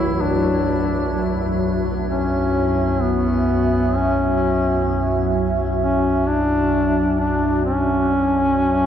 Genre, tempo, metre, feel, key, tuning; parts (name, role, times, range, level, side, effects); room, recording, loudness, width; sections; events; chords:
dark ambient drone; 65 BPM; 4/4; straight; B minor; A4 = 440 Hz
mellow duduk; melody; 0.0-8.9 s; B3 to E4; -20 LUFS; left 1 dB; ping-pong delay
deep dark ambient pad; sustained chords; 0.0-8.9 s; F#3 to E5; -23 LUFS; right 1 dB; chorus, built-in reverb
old church bells; arpeggios; 0.0-5.3 s; E3 to F#3; -32 LUFS; left 2 dB
deep rumbling drone; drone; 0.0-8.9 s; B1 to F#2; -24 LUFS; equal; built-in reverb
metallic inharmonic drone; texture; 0.0-8.9 s; C#5; -34 LUFS; left 1 dB; chorus, built-in reverb
wet cathedral reverb, RT60 7.6 s; worn, warbling old tape, cassette tape, warbly pitch drift; -17 LUFS; side -9 dB against mid
0.0-8.9 A section
fade-out on synth drone 0.0-8.9
0.0 Bsus2